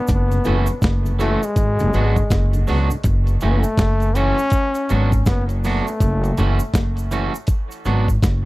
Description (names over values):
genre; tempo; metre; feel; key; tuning
roots reggae; 81 BPM; 4/4; swing 62% on 16ths; F# minor; A4 = 438 Hz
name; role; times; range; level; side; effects
clear trombone; melody; 0.0-6.7 s; G#3 to C#4; -24 LUFS; left 2 dB; dub echo
upright bass; bass; 0.1-8.5 s; F#1 to C#2; -18 LUFS; equal; none
dusty soul sampler-style drum kit; drums; 0.1-8.4 s; hi-hat, kick drum, snare drum; -19 LUFS; equal; none
cabasa; percussion; 0.1-8.4 s; none; -40 LUFS; right 5 dB; none
mellow tonewheel organ; accompaniment; 0.3-3.0 s; F#2 to F#4; -30 LUFS; left 1 dB; overdrive, chorus vibrato, slow rotary speaker, dub echo
electric guitar at the edge of break-up; accompaniment; 0.5-8.1 s; E3 to F#4; -26 LUFS; right 3 dB; dub echo
room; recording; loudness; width
small room ambience; dry, close 1970s-style studio recording; -16 LUFS; side -19 dB against mid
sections
0.0-3.0 A section; 3.0-8.5 A section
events
none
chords
0.1 F#m7; 1.6 G#m7b5; 3.0 F#m7; 4.5 G#m7b5; 6.0 F#m7; 7.5 G#m7b5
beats
| 0.09 0.82 1.56 2.30 | 3.04 3.78 4.52 5.26 | 6.00 6.74 7.48 8.22